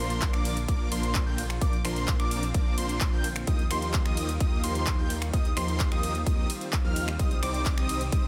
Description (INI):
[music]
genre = EDM, festival progressive house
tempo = 129 BPM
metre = 4/4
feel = straight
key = Bb major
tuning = A4 = 441 Hz
[part]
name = lush unison pad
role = sustained chords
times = 0.0-8.3 s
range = D3 to G4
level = -42 LUFS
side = equal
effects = chorus, sidechain pumping
[part]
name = unison lead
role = arpeggios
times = 0.0-8.3 s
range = C6 to G6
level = -37 LUFS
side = equal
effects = lush chorus, cassette tape, sidechain pumping, digital delay
[part]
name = big supersaw lead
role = riff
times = 0.0-8.3 s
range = F3 to G5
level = -36 LUFS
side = equal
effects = sidechain pumping, digital delay
[part]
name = detuned saw bass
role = bass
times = 0.0-8.3 s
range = Bb1 to Eb2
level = -35 LUFS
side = equal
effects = chorus, sidechain pumping
[part]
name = big-room dance drum kit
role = drums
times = 0.1-8.2 s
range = finger snaps, handclaps, hi-hat, ride cymbal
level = -37 LUFS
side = equal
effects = none
[part]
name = electronic kick drum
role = drums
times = 0.2-8.2 s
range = none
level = -29 LUFS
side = equal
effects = none
[sound]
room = little or no reverb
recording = dense, heavily limited modern master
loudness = -27 LUFS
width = mono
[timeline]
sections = 0.0-8.3 A section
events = none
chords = 0.0 Bb; 3.5 Ebadd9; 7.2 Cm